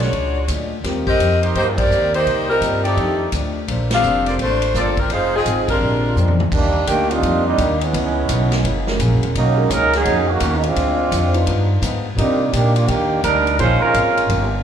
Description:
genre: jazz, big band swing.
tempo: 170 BPM.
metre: 4/4.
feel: swing 64% on 8ths.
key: Bb major, Eb major from 6.5 s.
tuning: A4 = 440 Hz.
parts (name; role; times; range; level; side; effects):
clear saxophone section; melody; 0.0-6.4 s; Eb3 to F5; -18 LUFS; left 1 dB; slapback echo.
dark concert grand piano; accompaniment; 0.0-13.8 s; C#3 to Cb5; -26 LUFS; equal; slapback echo.
upright bass; bass; 0.0-14.6 s; Fb1 to C3; -20 LUFS; equal; none.
swinging big-band drum kit; drums; 0.0-14.4 s; crash cymbal, hi-hat, kick drum, ride cymbal, snare drum, toms; -26 LUFS; equal; none.
fingerpicked swing-style acoustic guitar; accompaniment; 0.1-14.5 s; F2 to C5; -28 LUFS; left 5 dB; slapback echo.
clear trumpet section; stabs; 1.4-5.6 s; Eb4 to F5; -27 LUFS; right 3 dB; slapback echo.
clear trombone section; second line; 6.5-14.5 s; Eb3 to C5; -18 LUFS; right 3 dB; slapback echo.
room: light reverb, small room ambience.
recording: live gig heard through the venue's PA, club reverb.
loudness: -15 LUFS.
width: side -8 dB against mid.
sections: 0.0-6.5 A section; 6.5-14.6 B section.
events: band accent 1.7, 3.9; drum fill 6.2-6.5; trombone section solo 6.5-14.6.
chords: 0.0 Bb7alt; 0.8 Eb6; 2.3 Cm7; 3.0 F13; 3.7 Bbmaj9; 5.1 Fm7; 5.8 Bb9; 6.5 Ebmaj7; 7.9 Dbm9; 8.6 Gb9; 9.3 Bmaj9; 10.8 Dm7b5; 11.5 G7b13; 12.2 Cm9; 13.6 Bbm7.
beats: 0.13 0.48 | 0.84 1.20 1.55 1.91 | 2.26 2.62 2.97 3.33 | 3.68 4.04 4.39 4.75 | 5.10 5.46 5.81 6.16 | 6.52 6.87 7.23 7.58 | 7.93 8.29 8.64 8.99 | 9.35 9.70 10.05 10.41 | 10.76 11.12 11.47 11.82 | 12.18 12.53 12.88 13.24 | 13.59 13.94 14.30.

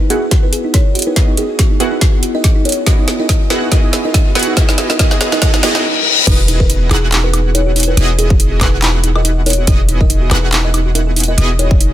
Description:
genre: future bass.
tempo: 141 BPM.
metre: 4/4.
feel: swing 56% on 16ths, half-time.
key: E major.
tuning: A4 = 443 Hz.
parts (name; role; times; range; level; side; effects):
ethereal airy pad; sustained chords; 0.0-5.8 s; B3 to D#5; -28 LUFS; equal; none.
thumb-piano-like synth pluck; arpeggios; 0.0-11.9 s; D#4 to G#4; -24 LUFS; right 2 dB; chorus, sidechain pumping, ping-pong delay.
supersaw stab; riff; 0.0-11.9 s; B3 to F#5; -20 LUFS; right 1 dB; sidechain pumping, low-pass filter.
riser and reverse cymbal; sound effects; 0.0-6.3 s; none; -18 LUFS; left 5 dB; none.
buzzing kalimba; melody; 0.1-11.9 s; G#4 to E5; -22 LUFS; equal; sidechain pumping, ping-pong delay.
trap drum kit; drums; 0.1-11.9 s; crash cymbal, handclaps, hi-hat, snare drum, woodblock; -17 LUFS; equal; high-pass filter on snare, high-pass filter on hats, high-pass filter on cymbals, high-pass filter on perc.
electronic kick drum; drums; 0.3-11.8 s; none; -12 LUFS; equal; none.
wide unison pluck; arpeggios; 6.3-11.9 s; D#6 to F#6; -30 LUFS; equal; none.
warm 808-style bass; bass; 6.3-11.9 s; E1; -14 LUFS; equal; sidechain pumping.
room: light reverb.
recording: none.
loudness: -10 LUFS.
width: side -12 dB against mid.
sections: 0.0-6.3 A section; 6.3-11.9 B section.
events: build-up 0.0-6.3; drum fill 0.0-5.8; riser 0.0-6.3; filter sweep on supersaw synth 0.0-6.3; reverse cymbal 5.4-6.3; drop 6.3-11.9.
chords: 0.0 Emaj9.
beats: 0.31 0.74 | 1.16 1.59 2.02 2.44 | 2.87 3.29 3.72 4.14 | 4.57 4.99 5.42 5.84 | 6.27 6.70 7.12 7.55 | 7.97 8.40 8.82 9.25 | 9.68 10.10 10.53 10.95 | 11.38 11.80.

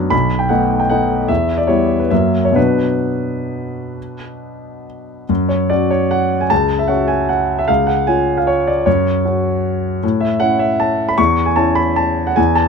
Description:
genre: classical, piano waltz.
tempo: 124-164 BPM.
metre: 3/4.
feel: rubato.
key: B minor, F# minor from 5.3 s.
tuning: A4 = 441 Hz.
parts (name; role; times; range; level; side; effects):
clear grand piano; solo; 0.0-12.7 s; B1 to C#6; -14 LUFS; equal; none.
room: light reverb.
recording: close, detailed microphones.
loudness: -13 LUFS.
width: side -5 dB against mid.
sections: 0.0-5.3 A section; 5.3-12.7 B section.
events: none.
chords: 0.1 B7; 1.3 Em; 2.1 F#7; 2.6 Bm; 5.3 F#5; 7.7 C#; 8.9 F#5; 10.0 A.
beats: | 0.12 0.50 0.91 | 1.29 1.68 2.11 | 2.56 3.04 3.52 | 3.97 4.41 4.85 | 5.29 5.70 6.12 | 6.51 6.89 7.29 | 7.69 8.08 8.48 | 8.87 9.25 9.65 | 10.03 10.41 10.80 | 11.18 11.56 11.97 | 12.37.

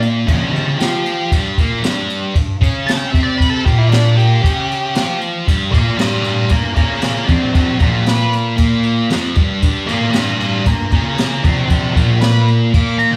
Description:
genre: garage rock duo or trio.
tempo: 116 BPM.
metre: 4/4.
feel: straight.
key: unclear.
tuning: A4 = 435 Hz.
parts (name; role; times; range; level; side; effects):
thick fuzz guitar; riff; 0.0-13.2 s; F2 to F4; -18 LUFS; equal; distortion.
jazz brush drum kit; drums; 0.0-13.1 s; crash cymbal, kick drum, ride cymbal, snare drum; -19 LUFS; equal; none.
octave-fuzz lead guitar; melody; 0.3-13.2 s; B3 to D6; -21 LUFS; equal; distortion, tape echo.
room: moderate club reverb, RT60 0.7 s.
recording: live gig heard through the venue's PA, club reverb.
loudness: -15 LUFS.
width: mono.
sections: 0.0-13.2 A section.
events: lead electric guitar solo 0.0-13.2.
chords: 0.0 G5.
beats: 0.28 0.80 | 1.32 1.83 2.35 2.87 | 3.39 3.91 4.43 4.95 | 5.47 5.99 6.51 7.03 | 7.55 8.07 8.59 9.11 | 9.63 10.15 10.67 11.19 | 11.71 12.23 12.74.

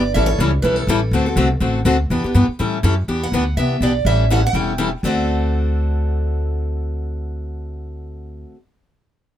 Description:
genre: acoustic string swing (jazz manouche).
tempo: 246 BPM.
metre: 4/4.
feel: swing 56% on 8ths.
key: D mixolydian.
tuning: A4 = 440 Hz.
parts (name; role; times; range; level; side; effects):
picked acoustic archtop guitar; melody; 0.0-8.4 s; A4 to G5; -24 LUFS; right 3 dB; none.
upright bass; bass; 0.0-8.4 s; E1 to A2; -19 LUFS; equal; none.
picked steel-string acoustic guitar; accompaniment; 0.2-8.6 s; D3 to A4; -21 LUFS; left 2 dB; none.
room: little or no reverb.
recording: close, detailed microphones.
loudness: -16 LUFS.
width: side -11 dB against mid.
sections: 0.0-3.1 A section; 3.1-5.0 B section; 5.0-7.0 C section.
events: none.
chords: 0.2 A7; 1.1 D7; 2.1 Em7; 2.6 A7; 3.1 Em7; 4.0 A7; 5.0 D7.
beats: | 0.16 0.40 0.65 0.89 | 1.13 1.37 1.62 1.86 | 2.10 2.35 2.59 2.83 | 3.08 3.32 3.56 3.81 | 4.05 4.29 4.54 4.78 | 5.02 5.27 5.51 5.75 | 6.00 6.24 6.49 6.73.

